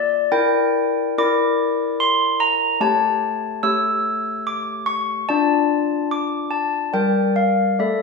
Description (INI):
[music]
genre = classical, tune for handbells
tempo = 72 BPM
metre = 3/4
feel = straight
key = D minor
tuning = A4 = 440 Hz
[part]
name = handbells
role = solo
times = 0.0-8.0 s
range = G3 to E6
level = -17 LUFS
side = left 2 dB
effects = none
[sound]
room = wet recital hall reverb, RT60 1.4 s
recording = small room reverb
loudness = -17 LUFS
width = side -3 dB against mid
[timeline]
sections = 0.0-8.0 A section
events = none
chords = 0.3 Em7b5; 2.8 A7; 5.3 Dm; 6.9 Gm